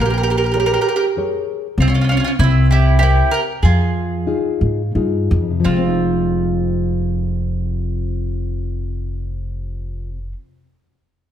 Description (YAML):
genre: italian folk, Italian serenade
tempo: 86-99 BPM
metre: 3/4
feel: straight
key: F minor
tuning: A4 = 440 Hz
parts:
  - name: mandolin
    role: melody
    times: 0.0-10.3 s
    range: E4 to Bb4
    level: -22 LUFS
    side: right 2 dB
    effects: slapback echo
  - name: mandolin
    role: second line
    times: 0.0-10.3 s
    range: C4 to G4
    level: -23 LUFS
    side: right 5 dB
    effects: none
  - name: nylon-string guitar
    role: accompaniment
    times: 0.0-10.5 s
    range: F2 to E5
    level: -21 LUFS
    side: left 2 dB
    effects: none
  - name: upright bass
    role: bass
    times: 0.0-10.3 s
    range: F1 to Ab2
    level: -18 LUFS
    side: equal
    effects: none
room: moderate recital hall reverb, RT60 1.5 s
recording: none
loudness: -15 LUFS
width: side -10 dB against mid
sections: 0.0-5.6 A section; 5.6-9.8 B section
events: slowing down 1.8-5.6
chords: 0.0 Bbm7; 1.8 Dbmaj7/C; 2.4 C7; 3.6 Fm7